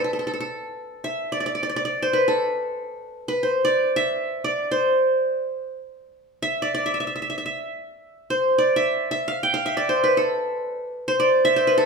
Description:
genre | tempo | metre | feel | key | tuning
Turkish makam ensemble | free time | none | none | A makam nihavent | A4 = 440 Hz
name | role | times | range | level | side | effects
qanun | solo | 0.0-11.9 s | A4 to G5 | -20 LUFS | equal | none
room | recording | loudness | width
moderate recital hall reverb, RT60 1.4 s | minimal, uncompressed stereo recording | -20 LUFS | side -4 dB against mid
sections
0.0-11.9 A section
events
none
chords
none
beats
free time

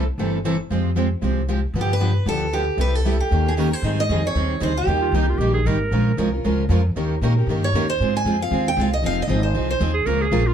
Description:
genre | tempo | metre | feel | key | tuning
acoustic string swing (jazz manouche) | 230 BPM | 4/4 | swing 55% on 8ths | C major, Ab major from 3.8 s | A4 = 440 Hz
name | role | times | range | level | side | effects
picked plugged-in steel-string acoustic guitar | accompaniment | 0.0-10.5 s | C3 to Bb4 | -25 LUFS | left 4 dB | none
picked steel-string acoustic guitar | accompaniment | 0.0-10.4 s | C3 to Bb4 | -27 LUFS | right 5 dB | none
upright bass | bass | 0.0-10.5 s | F1 to Bb2 | -22 LUFS | equal | none
picked steel-string acoustic guitar | melody | 1.8-5.3, 7.6-9.9 s | G4 to Ab5 | -24 LUFS | right 2 dB | slapback echo
clear clarinet | second line | 5.0-6.2, 9.9-10.5 s | Eb4 to Bb4 | -24 LUFS | right 4 dB | none
room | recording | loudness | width
light reverb | dark, warm production, lossy compression artefacts | -18 LUFS | side -8 dB against mid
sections
0.0-3.8 A section; 3.8-10.5 B section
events
none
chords
0.0 C6; 0.7 Fmadd9; 1.8 G7; 2.8 Cmaj7; 3.3 Eb7; 3.8 Abmaj7; 4.9 Eb; 5.9 Bbm7; 7.0 Eb7; 8.0 Ab6; 9.0 Fm7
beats
0.19 0.45 | 0.71 0.97 1.23 1.49 | 1.75 2.01 2.27 2.54 | 2.80 3.06 3.32 3.58 | 3.84 4.10 4.36 4.62 | 4.89 5.15 5.41 5.67 | 5.93 6.19 6.45 6.71 | 6.96 7.22 7.48 7.74 | 8.00 8.26 8.52 8.78 | 9.04 9.29 9.55 9.81 | 10.07 10.32

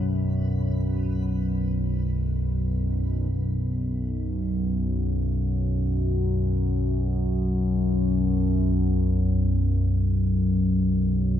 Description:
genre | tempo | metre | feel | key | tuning
dark ambient drone | free time | none | none | unclear | A4 = 441 Hz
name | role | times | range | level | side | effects
analog drone | drone | 0.0-11.4 s | B1 to F#2 | -22 LUFS | equal | chorus
backwards swelling texture | texture | 0.0-3.3 s | B3 to B4 | -48 LUFS | right 2 dB | built-in reverb
room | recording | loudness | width
moderate lush hall reverb, RT60 2.6 s | dreamy mix soaked in reverb | -22 LUFS | side -10 dB against mid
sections
0.0-3.3 A section; 3.3-11.4 B section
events
fade-out on synth texture 0.0-3.3; filter sweep on synth drone 0.0-3.3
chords
0.0 B5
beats
free time

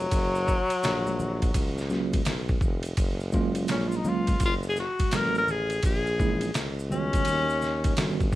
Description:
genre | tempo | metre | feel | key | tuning
hip hop, jazz-hop | 84 BPM | 4/4 | swing 65% on 16ths | F# major | A4 = 440 Hz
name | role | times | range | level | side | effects
mellow tenor saxophone | melody | 0.0-8.3 s | F#3 to A#4 | -27 LUFS | left 2 dB | plate reverb
warm tuba | bass | 0.0-8.4 s | E#1 to D#2 | -31 LUFS | equal | none
maracas and congas | percussion | 0.0-8.4 s | none | -41 LUFS | left 2 dB | none
trip hop sampler-style drum kit | drums | 0.1-8.4 s | hi-hat, kick drum, ride cymbal, snare drum | -28 LUFS | equal | none
mellow tine electric piano | accompaniment | 1.9-8.3 s | D#3 to F#4 | -29 LUFS | right 3 dB | medium stereo tremolo, plate reverb
room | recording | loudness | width
light reverb | none | -24 LUFS | side -16 dB against mid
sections
0.0-3.0 A section; 3.0-8.4 B section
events
none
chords
0.0 F#maj7; 5.8 A#m7b5; 7.3 D#7alt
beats
| 0.12 0.83 1.55 2.26 | 2.98 3.69 4.40 5.12 | 5.83 6.55 7.26 7.97

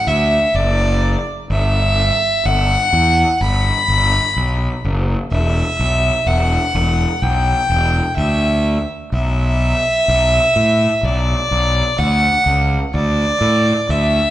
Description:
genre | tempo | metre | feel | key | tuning
post-rock | 63 BPM | 4/4 | straight | E minor | A4 = 440 Hz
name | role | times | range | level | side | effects
warm violin | melody | 0.0-14.3 s | D5 to B5 | -16 LUFS | equal | none
fuzz fingered electric bass | bass | 0.1-14.2 s | E1 to A2 | -17 LUFS | equal | overdrive
room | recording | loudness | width
wet recital hall reverb, RT60 1.8 s | recorded in a church or concert hall, nothing above 10.6 kHz | -14 LUFS | side -14 dB against mid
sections
0.0-14.3 A section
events
none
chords
0.0 D; 1.5 Gmaj7; 5.3 Em7; 9.1 Bm; 12.9 Dsus2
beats
0.56 | 1.51 2.46 3.41 4.37 | 5.32 6.27 7.22 8.18 | 9.13 10.08 11.04 11.99 | 12.94 13.89

